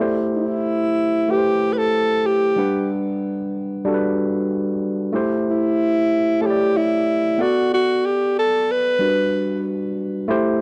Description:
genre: soul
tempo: 93 BPM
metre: 4/4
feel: swing 54% on 16ths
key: A dorian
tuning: A4 = 442 Hz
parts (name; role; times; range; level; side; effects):
- barky tine electric piano; accompaniment; 0.0-10.6 s; G3 to F#5; -24 LUFS; equal; overdrive
- breathy alto saxophone; melody; 0.4-9.7 s; E4 to B4; -21 LUFS; equal; none
room: small room ambience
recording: dry, close 1970s-style studio recording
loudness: -20 LUFS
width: mono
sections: 0.0-10.3 A section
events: none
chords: 0.0 Am7; 2.6 Gmaj7; 5.2 Am7; 7.4 Bm7; 9.0 Gmaj7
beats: | 0.02 0.66 1.30 1.95 | 2.59 3.23 3.87 4.52 | 5.16 5.80 6.45 7.09 | 7.73 8.38 9.02 9.66 | 10.30

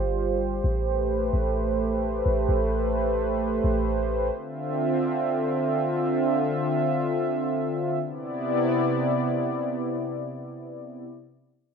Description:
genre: hip hop, atmospheric cloud-rap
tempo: free time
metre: none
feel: none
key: C major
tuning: A4 = 443 Hz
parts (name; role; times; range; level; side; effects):
- warm analog pad; sustained chords; 0.0-11.1 s; C3 to E5; -24 LUFS; right 1 dB; chorus
- clean 808-style bass; bass; 0.0-4.3 s; G1 to A1; -28 LUFS; left 1 dB; none
room: moderate studio reverb, RT60 0.5 s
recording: rough home demo mix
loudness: -23 LUFS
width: side -6 dB against mid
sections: 0.0-8.0 A section; 8.0-11.7 B section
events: none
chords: 0.0 G7sus4; 0.6 Am9; 4.3 Dm9; 8.0 Cmaj9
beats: free time

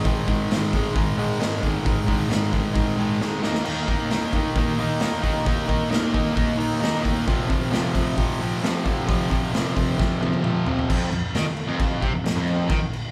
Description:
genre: garage rock duo or trio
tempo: 133 BPM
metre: 4/4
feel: straight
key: unclear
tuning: A4 = 440 Hz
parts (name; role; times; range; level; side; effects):
- fuzz guitar; riff; 0.0-12.8 s; F2 to Eb4; -25 LUFS; equal; distortion
- raw garage drum kit; drums; 0.1-13.0 s; crash cymbal, hi-hat, kick drum, snare drum, toms; -27 LUFS; equal; none
room: moderate large studio reverb, RT60 1.2 s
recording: band playing live in one room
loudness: -23 LUFS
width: mono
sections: 0.0-10.9 A section; 10.9-13.1 B section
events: drum fill 3.2-3.7, 10.0-10.9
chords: 0.0 Ab5; 3.4 Eb5; 7.3 F5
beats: | 0.05 0.50 0.95 1.40 | 1.85 2.31 2.76 3.21 | 3.66 4.11 4.56 5.01 | 5.46 5.92 6.37 6.82 | 7.27 7.73 8.18 8.63 | 9.08 9.54 9.99 10.44 | 10.89 11.34 11.79 12.25 | 12.70

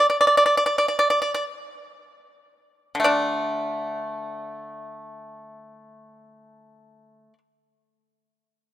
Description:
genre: chinese traditional, Chinese solo plucked strings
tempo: 44-53 BPM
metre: 4/4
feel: rubato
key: unclear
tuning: A4 = 438 Hz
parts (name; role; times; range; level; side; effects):
- pipa; solo; 0.0-7.4 s; D3 to D5; -20 LUFS; equal; none
room: light reverb, small room reverb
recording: rough home demo mix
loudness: -20 LUFS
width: side -13 dB against mid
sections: 0.0-3.1 A section; 3.1-8.3 B section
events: slowing down 0.0-3.1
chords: none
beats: 0.44 1.71 | 3.06 4.38 5.64 6.93

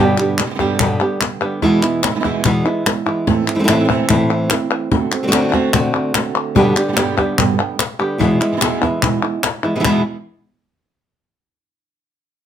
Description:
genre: flamenco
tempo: 146 BPM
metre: 4/4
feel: straight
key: unclear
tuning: A4 = 441 Hz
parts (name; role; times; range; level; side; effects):
- flamenco guitar; melody; 0.0-10.0 s; E2 to G4; -16 LUFS; equal; none
- flamenco guitar; stabs; 0.0-10.0 s; E2 to G4; -21 LUFS; right 6 dB; slapback echo
- palmas hand claps; percussion; 0.2-9.9 s; none; -20 LUFS; left 3 dB; none
- cajon; percussion; 0.4-9.9 s; none; -21 LUFS; left 7 dB; none
room: light reverb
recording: close, detailed microphones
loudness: -14 LUFS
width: side -9 dB against mid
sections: 0.0-3.3 A section; 3.3-9.8 A section; 9.8-11.5 B section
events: none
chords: 0.0 G; 1.6 E; 3.3 Am; 4.9 D7; 6.6 G; 8.2 E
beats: 0.39 0.80 1.21 | 1.63 2.04 2.45 2.86 | 3.27 3.69 4.10 4.51 | 4.92 5.33 5.74 6.15 | 6.56 6.97 7.38 7.79 | 8.20 8.61 9.02 9.44 | 9.85

